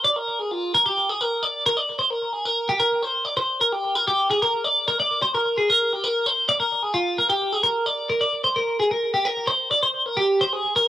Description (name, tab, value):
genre	rock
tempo	261 BPM (eighths)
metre	7/8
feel	straight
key	unclear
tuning	A4 = 440 Hz
part	twelve-string electric guitar	solo	0.0-10.9 s	F4 to D5	-19 LUFS	equal	lush chorus, cassette tape, analog delay
room	moderate booth ambience, RT60 0.2 s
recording	home recording on cassette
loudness	-19 LUFS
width	side -13 dB against mid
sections	0.0-10.9 A section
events	none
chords	none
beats	0.05 0.28 0.51 0.74 0.97 | 1.20 1.43 1.66 1.89 2.12 2.35 2.58 | 2.81 3.04 3.27 3.50 3.73 3.96 4.19 | 4.42 4.65 4.88 5.11 5.34 5.57 5.80 | 6.03 6.26 6.49 6.72 6.95 7.18 7.41 | 7.64 7.87 8.10 8.33 8.56 8.79 9.02 | 9.25 9.48 9.71 9.94 10.17 10.40 10.63 | 10.86